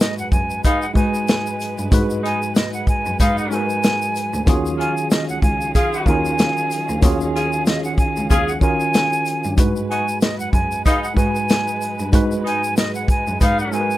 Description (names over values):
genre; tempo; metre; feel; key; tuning
hip hop, boom-bap hip-hop; 94 BPM; 4/4; swing 57% on 16ths; G# dorian; A4 = 440 Hz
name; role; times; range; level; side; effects
silver concert flute; melody; 0.0-14.0 s; D#5 to G#5; -23 LUFS; right 1 dB; high-pass filter, low-pass filter, tape echo
mellow tine electric piano; accompaniment; 0.0-14.0 s; G#2 to B4; -23 LUFS; equal; fast stereo tremolo, cassette tape, high-pass filter, low-pass filter
warm studio string section; sustained chords; 0.0-14.0 s; D#3 to E#5; -34 LUFS; left 1 dB; high-pass filter, low-pass filter
warm soul drum kit; drums; 0.0-13.9 s; hi-hat, kick drum, shaker, snare drum; -17 LUFS; equal; none
egg shaker; percussion; 0.0-14.0 s; none; -36 LUFS; left 4 dB; none
warm cello; bass; 0.2-13.7 s; C#2 to G#2; -25 LUFS; equal; none
bright saxophone section; stabs; 0.6-13.8 s; G#3 to G#4; -24 LUFS; left 1 dB; high-pass filter, low-pass filter, tape echo
room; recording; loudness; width
little or no reverb; rough home demo mix; -16 LUFS; side -15 dB against mid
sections
0.0-14.0 A section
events
none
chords
0.0 G#m7; 4.5 D#m11; 9.6 G#m7